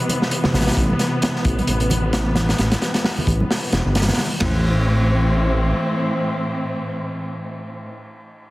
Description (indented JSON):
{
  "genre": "breakbeat, breaks",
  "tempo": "132 BPM",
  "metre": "4/4",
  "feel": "swing 58% on 16ths",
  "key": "A minor",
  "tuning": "A4 = 440 Hz",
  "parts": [
    { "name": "warm studio string section", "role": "sustained chords", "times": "0.0-7.9 s", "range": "A2 to C4", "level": "-23 LUFS", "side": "equal", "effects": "sidechain pumping" },
    { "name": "crunchy breakbeat drum kit", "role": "drums", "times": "0.0-4.5 s", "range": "hi-hat, kick drum, ride cymbal, snare drum, toms", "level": "-22 LUFS", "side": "equal", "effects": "none" },
    { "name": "congas", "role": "percussion", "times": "0.1-4.3 s", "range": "none", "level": "-27 LUFS", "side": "right 1 dB", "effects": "none" },
    { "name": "dark detuned saw bass", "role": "bass", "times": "0.5-5.7 s", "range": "E1 to A1", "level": "-19 LUFS", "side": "equal", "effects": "none" }
  ],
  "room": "light reverb, small room ambience",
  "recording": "heavily compressed radio sound",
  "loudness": "-17 LUFS",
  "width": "side -19 dB against mid",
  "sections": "0.0-4.4 A section; 4.4-8.0 B section",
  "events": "none",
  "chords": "0.0 Am",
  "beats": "0.32 | 0.77 1.22 1.68 2.13 | 2.59 3.04 3.50 3.95 | 4.41 4.86 5.32 5.77 | 6.22 6.68 7.13 7.59"
}